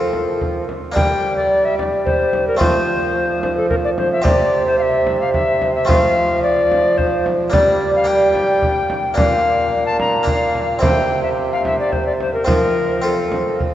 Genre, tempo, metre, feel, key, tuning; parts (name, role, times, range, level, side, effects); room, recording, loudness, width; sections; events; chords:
classical, renaissance-style consort dance; 109 BPM; 3/4; straight; G dorian; A4 = 438 Hz
tenor recorder; melody; 0.0-13.6 s; A4 to Bb5; -18 LUFS; left 2 dB
harpsichord; accompaniment; 0.0-13.7 s; Bb2 to G4; -22 LUFS; right 1 dB
warm bassoon; bass; 0.0-13.7 s; Bb2 to G3; -20 LUFS; right 2 dB
frame drum; percussion; 0.1-13.7 s; -22 LUFS; right 1 dB
wet cathedral reverb, RT60 5.3 s; worn, warbling old tape, cassette tape, warbly pitch drift; -14 LUFS; side -12 dB against mid
1.0-13.7 A section
0.0 F; 1.0 Gm; 2.6 F; 4.2 C5; 5.9 F; 7.5 Gm; 9.2 Bb; 10.8 C; 12.5 F